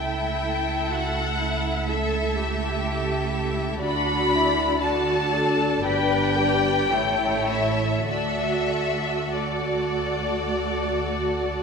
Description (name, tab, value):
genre	classical, slow romantic movement for string orchestra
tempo	48-62 BPM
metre	4/4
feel	rubato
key	D major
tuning	A4 = 438 Hz
part	rich studio violin section	melody	0.0-11.6 s	D5 to B5	-26 LUFS	left 3 dB	none
part	rich chamber violin section	second line	0.0-11.6 s	A4 to E5	-30 LUFS	left 3 dB	none
part	warm chamber viola section	accompaniment	0.0-11.6 s	A3 to G4	-27 LUFS	right 1 dB	none
part	rich chamber cello section	bass	0.0-11.6 s	E4 to B4	-30 LUFS	right 2 dB	none
part	rich chamber double bass section	bass	0.0-11.6 s	G1 to D2	-30 LUFS	right 3 dB	none
room	wet scoring stage reverb, RT60 1.7 s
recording	minimal, uncompressed stereo recording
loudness	-21 LUFS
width	side -5 dB against mid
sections	0.0-11.6 A section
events	none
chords	0.0 A7/C#; 3.8 D; 5.8 G; 6.9 A; 8.1 D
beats	0.90 1.87 2.85 | 3.83 4.82 5.84 6.92 | 8.09 9.32 10.52